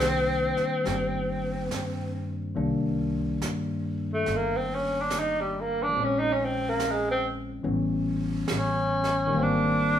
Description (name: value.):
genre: jazz ballad.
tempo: 71 BPM.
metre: 4/4.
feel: swing 68% on 8ths.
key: C minor.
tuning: A4 = 436 Hz.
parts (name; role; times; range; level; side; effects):
breathy tenor saxophone; melody; 0.0-10.0 s; G3 to Eb4; -26 LUFS; equal; none.
barky tine electric piano; accompaniment; 0.0-10.0 s; Eb3 to D4; -29 LUFS; left 2 dB; overdrive.
upright bass; bass; 0.0-10.0 s; G1 to G2; -34 LUFS; right 1 dB; none.
jazz brush drum kit; drums; 0.0-10.0 s; brushed snare drum, hi-hat, snare drum; -36 LUFS; right 4 dB; none.
room: wet large studio reverb, RT60 1.0 s.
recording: band playing live in one room.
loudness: -25 LUFS.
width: side -10 dB against mid.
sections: 0.0-2.6 A section; 2.6-10.0 B section.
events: tenor saxophone solo 2.6-10.0.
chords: 0.0 Cm9; 6.0 Bbm9; 7.6 A9; 9.3 Abmaj9.